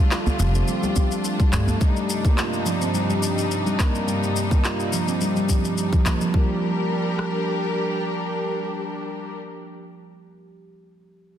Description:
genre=organic downtempo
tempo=106 BPM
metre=4/4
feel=swing 54% on 16ths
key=G minor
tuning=A4 = 439 Hz
part: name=rich studio string section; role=sustained chords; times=0.0-9.4 s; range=G2 to Bb4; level=-27 LUFS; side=left 1 dB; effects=sidechain pumping
part: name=handpan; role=arpeggios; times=0.0-6.6 s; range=F3 to F4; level=-25 LUFS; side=right 1 dB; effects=low-pass filter, tape echo
part: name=bronze singing bowl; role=texture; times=0.0-6.3 s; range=G4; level=-43 LUFS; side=right 2 dB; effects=none
part: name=electronic handclaps and shaker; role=drums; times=0.1-6.3 s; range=none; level=-30 LUFS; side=left 2 dB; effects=studio reverb
part: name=djembe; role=percussion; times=0.3-1.8 s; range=none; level=-27 LUFS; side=equal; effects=none
part: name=upright bass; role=bass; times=0.4-1.7 s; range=F1 to G2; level=-21 LUFS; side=equal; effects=sidechain pumping
part: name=organic electronic drum kit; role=drums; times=1.0-7.3 s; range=kick drum, rim click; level=-20 LUFS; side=equal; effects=studio reverb, soft clipping on snare
room=moderate lush hall reverb, RT60 2.5 s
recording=dense, heavily limited modern master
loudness=-20 LUFS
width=side -10 dB against mid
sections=0.0-6.3 A section; 6.3-8.6 B section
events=filter sweep on handpan 0.0-6.3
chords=0.0 Dm; 1.8 Cm/G; 6.3 Gm

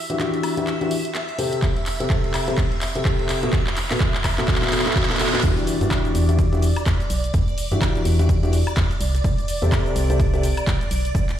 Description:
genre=piano house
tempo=126 BPM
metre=4/4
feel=swing 59% on 16ths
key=E minor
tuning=A4 = 440 Hz
part: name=string machine, violins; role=sustained chords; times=0.0-11.4 s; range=D5 to E5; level=-31 LUFS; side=right 1 dB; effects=ensemble chorus, sidechain pumping
part: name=riser, reverse cymbal and impact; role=sound effects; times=0.9-7.3 s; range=none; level=-34 LUFS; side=right 2 dB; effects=none
part: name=dark grand piano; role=riff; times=0.1-10.4 s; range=B2 to E5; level=-24 LUFS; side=left 2 dB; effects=sidechain pumping, low-pass filter, ping-pong delay
part: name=organ-like FM bass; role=bass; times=0.1-11.3 s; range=B1 to G2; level=-21 LUFS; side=equal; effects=sidechain pumping, high-pass filter
part: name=house drum kit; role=drums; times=0.1-11.4 s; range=crash cymbal, handclaps, hi-hat, shaker, woodblock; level=-27 LUFS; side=equal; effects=studio reverb
part: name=electronic kick drum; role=drums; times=1.6-11.3 s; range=none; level=-22 LUFS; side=equal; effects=studio reverb
part: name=breakbeat sampler-style drum kit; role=drums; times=5.4-11.3 s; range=ride cymbal, snare drum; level=-40 LUFS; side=right 2 dB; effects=none
room=light reverb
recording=played on a big sound system in a bare room, large studio reverb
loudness=-18 LUFS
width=side -10 dB against mid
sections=0.0-5.4 A section; 5.4-11.4 B section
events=build-up 0.0-5.4; drum fill 0.0-5.4; riser 0.9-5.4; reverse cymbal 4.5-5.4; drop 5.4-11.4; impact 5.4-7.3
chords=0.0 Em9; 1.4 C6; 3.3 B7(no3); 5.4 Em9; 9.0 C6

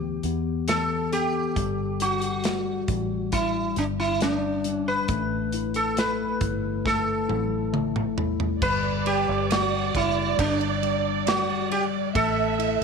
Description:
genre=pop ballad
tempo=68 BPM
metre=4/4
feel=straight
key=unclear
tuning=A4 = 440 Hz
part: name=sitar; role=melody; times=0.0-12.8 s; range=D4 to B4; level=-26 LUFS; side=right 2 dB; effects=none
part: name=tine electric piano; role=accompaniment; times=0.0-12.8 s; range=E3 to E4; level=-29 LUFS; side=left 15 dB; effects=medium stereo tremolo
part: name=fingered electric bass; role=bass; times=0.0-12.8 s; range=F#1 to E2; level=-32 LUFS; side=right 2 dB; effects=none
part: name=modern studio drum kit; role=drums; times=0.2-12.8 s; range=crash cymbal, hi-hat, kick drum, ride cymbal, snare drum, toms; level=-30 LUFS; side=right 2 dB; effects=none
part: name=dark studio violin section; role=second line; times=8.6-12.8 s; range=D5 to E5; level=-28 LUFS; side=right 15 dB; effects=none
room=small room ambience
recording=1960s-style stereo with parts hard left and right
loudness=-22 LUFS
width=side -5 dB against mid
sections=0.0-8.6 A section; 8.6-12.8 B section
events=drum fill 6.9-8.6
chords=0.0 Em; 1.6 Gmaj7sus2; 5.1 Asus2; 8.6 G5; 12.2 F#m7/A (rootless)

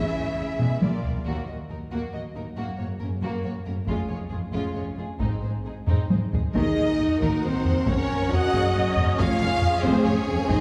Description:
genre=cinematic, epic orchestral film score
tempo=136 BPM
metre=3/4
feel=straight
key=Eb dorian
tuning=A4 = 440 Hz
part: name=warm symphonic violin section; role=melody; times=0.0-10.6 s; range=Eb4 to Gb5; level=-36 LUFS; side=equal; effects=none
part: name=rich studio violin section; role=second line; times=0.0-10.6 s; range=Bb3 to Gb5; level=-37 LUFS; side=equal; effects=none
part: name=warm symphonic viola section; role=accompaniment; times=0.0-10.6 s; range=G#3 to Eb5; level=-36 LUFS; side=equal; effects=none
part: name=mellow French horn section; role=sustained chords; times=0.0-10.6 s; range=Gb3 to Gb4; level=-32 LUFS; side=equal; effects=none
part: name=rich symphonic string section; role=sustained chords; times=0.0-1.3, 6.5-10.6 s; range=C4 to Ab5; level=-35 LUFS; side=equal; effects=none
part: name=rich symphonic cello section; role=bass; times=0.0-10.6 s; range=Eb2 to Eb3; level=-36 LUFS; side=equal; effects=none
part: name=rich symphonic double bass section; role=bass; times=0.2-10.6 s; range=F1 to E2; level=-32 LUFS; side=equal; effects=none
part: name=taiko ensemble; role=drums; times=0.6-10.6 s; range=none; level=-29 LUFS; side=equal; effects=none
part: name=timpani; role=percussion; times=6.5-7.2 s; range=Eb3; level=-37 LUFS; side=equal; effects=none
room=wet concert hall reverb, RT60 2.1 s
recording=heard from further back in the room, small room ambience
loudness=-25 LUFS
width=mono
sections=0.0-1.3 A section; 1.3-6.5 B section; 6.5-10.6 C section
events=drum fill 0.6-1.3, 5.9-6.5; band accent 1.3-1.7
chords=0.0 E; 0.8 A#7; 1.3 Ebm; 2.6 Gb; 3.9 Db/F; 5.2 Ab; 6.5 Ebm; 7.9 Gb; 9.2 Db/F

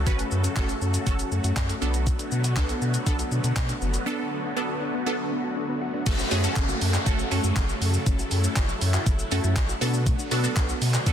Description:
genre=dance-pop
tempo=120 BPM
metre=4/4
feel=straight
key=F# minor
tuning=A4 = 439 Hz
part: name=filtered supersaw swell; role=sustained chords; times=0.0-11.1 s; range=C#3 to A4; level=-32 LUFS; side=equal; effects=phaser, sidechain pumping
part: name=thumb-piano-like synth pluck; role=arpeggios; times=0.0-10.8 s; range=F#3 to F#4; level=-35 LUFS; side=left 5 dB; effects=chorus, sidechain pumping, dub echo
part: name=saturated sub bass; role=bass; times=0.0-11.1 s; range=F#1 to B2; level=-26 LUFS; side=equal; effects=sidechain pumping
part: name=downlifter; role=sound effects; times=0.0-2.1, 6.1-10.1 s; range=none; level=-35 LUFS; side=right 1 dB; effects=none
part: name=wide unison pluck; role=accompaniment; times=0.1-11.1 s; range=A3 to B4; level=-30 LUFS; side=right 2 dB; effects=phaser, sidechain pumping
part: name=gated 80s digital drum machine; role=drums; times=0.1-11.1 s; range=crash cymbal, handclaps, hi-hat, kick drum, shaker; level=-26 LUFS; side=equal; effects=gated reverb
room=light reverb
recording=dense, heavily limited modern master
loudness=-22 LUFS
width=side -9 dB against mid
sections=0.0-6.1 A section; 6.1-11.1 B section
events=break 4.1-6.1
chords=0.0 F#m; 1.8 Bm7; 6.1 F#m; 9.8 Bm7

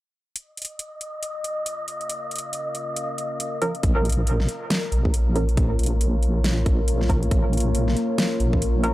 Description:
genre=deep dubstep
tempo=138 BPM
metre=4/4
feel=swing 60% on 16ths, half-time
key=Bb minor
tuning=A4 = 435 Hz
part: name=deep dark ambient pad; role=sustained chords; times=1.9-8.9 s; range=Bb3 to F5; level=-30 LUFS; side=left 1 dB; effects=chorus, built-in reverb
part: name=dubstep drum kit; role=drums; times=0.4-8.9 s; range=hi-hat, snare drum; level=-27 LUFS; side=equal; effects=none
part: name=wind-like tuned noise texture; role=texture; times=0.7-8.9 s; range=Bb4 to Eb5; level=-32 LUFS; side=left 2 dB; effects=built-in reverb
part: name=filtered dub chord stab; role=stabs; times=3.6-8.9 s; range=F3 to Bb4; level=-29 LUFS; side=right 2 dB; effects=lush chorus, dub echo
part: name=deep soft wobble bass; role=bass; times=3.8-8.9 s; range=Bb1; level=-21 LUFS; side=equal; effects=chorus, transformer saturation
part: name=electronic kick drum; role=drums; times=3.8-8.6 s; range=none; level=-22 LUFS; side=equal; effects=none
room=little or no reverb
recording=dry, gritty hardware recording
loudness=-21 LUFS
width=side -16 dB against mid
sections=0.4-3.8 A section; 3.8-8.9 B section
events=none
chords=0.4 Bbm

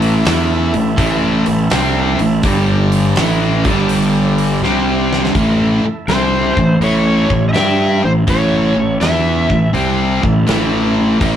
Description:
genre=blues rock power trio and southern rock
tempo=82 BPM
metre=4/4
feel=swing 67% on 8ths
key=unclear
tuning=A4 = 440 Hz
part: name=overdriven tonewheel organ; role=sustained chords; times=0.0-11.4 s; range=A3 to F5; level=-27 LUFS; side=right 5 dB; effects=none
part: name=sludgy distorted guitar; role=riff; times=0.0-11.4 s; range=G2 to G4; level=-15 LUFS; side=equal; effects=overdrive
part: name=fuzz fingered electric bass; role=bass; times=0.0-11.4 s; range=G1 to G2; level=-17 LUFS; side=equal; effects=overdrive
part: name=big rock drum kit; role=drums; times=0.0-11.4 s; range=hi-hat, kick drum, snare drum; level=-20 LUFS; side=equal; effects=none
part: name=overdriven slide guitar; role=melody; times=6.1-9.7 s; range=C5 to E5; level=-18 LUFS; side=equal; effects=none
room=wet studio ambience, RT60 0.4 s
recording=band playing live in one room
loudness=-12 LUFS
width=side -10 dB against mid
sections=0.0-5.4 A section; 5.4-11.4 B section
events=drum fill 4.6-5.4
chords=0.0 A5; 2.4 G5; 3.2 A5; 3.5 G5; 4.6 C5; 5.4 A

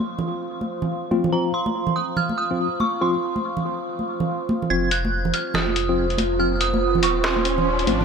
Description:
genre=deep dubstep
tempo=142 BPM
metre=4/4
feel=swing 61% on 16ths, half-time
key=unclear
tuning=A4 = 440 Hz
part: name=dark detuned synth bell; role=melody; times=0.0-7.8 s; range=Bb5 to Ab6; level=-26 LUFS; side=right 2 dB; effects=chorus, phaser, dub echo
part: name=dark analog pad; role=sustained chords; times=0.0-8.0 s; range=F4 to F5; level=-27 LUFS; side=right 4 dB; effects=chorus, phaser
part: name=congas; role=percussion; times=0.2-8.0 s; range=none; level=-26 LUFS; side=right 2 dB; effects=none
part: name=tine electric piano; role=stabs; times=1.1-8.0 s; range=F3 to F4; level=-27 LUFS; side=left 4 dB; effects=overdrive, fast stereo tremolo, low-pass filter, dub echo
part: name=dark detuned saw bass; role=bass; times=4.7-8.0 s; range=Eb1 to Ab1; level=-26 LUFS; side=equal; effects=none
part: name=riser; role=sound effects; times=5.8-8.0 s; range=none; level=-29 LUFS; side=right 2 dB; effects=none
part: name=trip hop sampler-style drum kit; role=drums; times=4.9-8.0 s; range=hi-hat, snare drum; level=-26 LUFS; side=left 2 dB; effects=high-pass filter on snare, low-pass filter on snare, high-pass filter on hats, low-pass filter on hats, high-pass filter on room, low-pass filter on room
room=light reverb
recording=none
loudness=-20 LUFS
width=side -6 dB against mid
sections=0.0-4.7 A section; 4.7-8.0 B section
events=filter sweep on analog synth pad 0.0-4.7; build-up 4.7-8.0; riser 5.8-8.0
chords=0.0 F5

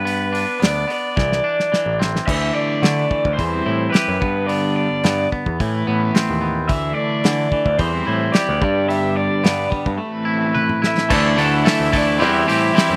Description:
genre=indie rock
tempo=109 BPM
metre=4/4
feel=straight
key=unclear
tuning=A4 = 440 Hz
part: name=raw garage guitar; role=melody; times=0.0-13.0 s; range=B4 to F#5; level=-24 LUFS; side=equal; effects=overdrive, slapback echo
part: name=twangy electric guitar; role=riff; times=0.0-13.0 s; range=E3 to B4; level=-25 LUFS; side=equal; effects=slapback echo
part: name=overdriven picked electric bass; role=bass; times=0.0-13.0 s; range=A1 to D3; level=-25 LUFS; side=equal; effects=none
part: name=cloth-damped thuddy drum kit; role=drums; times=0.1-12.9 s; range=crash cymbal, hi-hat, kick drum, snare drum, toms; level=-23 LUFS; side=equal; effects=none
part: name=electric guitar at the edge of break-up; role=riff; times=2.3-13.0 s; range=A2 to B4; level=-25 LUFS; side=equal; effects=none
part: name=brassy analog pad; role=sustained chords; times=6.7-13.0 s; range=G4 to E6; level=-37 LUFS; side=equal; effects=none
room=little or no reverb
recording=recorded outdoors, with no room sound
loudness=-18 LUFS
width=mono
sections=0.0-2.3 A section; 2.3-11.1 B section; 11.1-13.0 C section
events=drum fill 1.2-2.3, 10.6-11.1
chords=0.0 G; 1.2 Cadd9; 2.3 Dsus2; 3.4 C/E; 4.2 G; 5.6 Amadd9; 6.7 Dsus2; 7.8 C/E; 8.6 G; 10.0 Amadd9; 11.1 Dsus2; 12.2 C/E

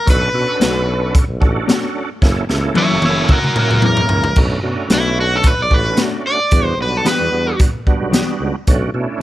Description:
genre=straight-eighth soul blues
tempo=112 BPM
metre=4/4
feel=swing 56% on 16ths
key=B minor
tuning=A4 = 442 Hz
part: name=crunchy overdriven guitar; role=melody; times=0.0-7.6 s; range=E4 to E5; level=-17 LUFS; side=equal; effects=none
part: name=bright tonewheel organ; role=accompaniment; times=0.1-9.2 s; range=G3 to A#4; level=-23 LUFS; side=right 4 dB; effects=slow rotary speaker, chorus vibrato
part: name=warm tuba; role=bass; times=0.1-9.2 s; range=F#1 to B2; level=-21 LUFS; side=equal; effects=none
part: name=crunchy breakbeat drum kit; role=drums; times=0.1-8.8 s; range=crash cymbal, hi-hat, kick drum, snare drum, toms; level=-16 LUFS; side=equal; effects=none
part: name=mellow electric guitar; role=stabs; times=0.6-8.3 s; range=B2 to A4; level=-22 LUFS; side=left 6 dB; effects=none
room=little or no reverb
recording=none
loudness=-13 LUFS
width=side -14 dB against mid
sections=0.0-4.4 A section; 4.4-9.2 B section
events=overdriven electric guitar solo 0.0-4.4; drum fill 2.2-4.4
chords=0.1 Bm7; 2.2 F#7#9; 4.4 Bm7; 6.5 Em7; 8.7 Bm7

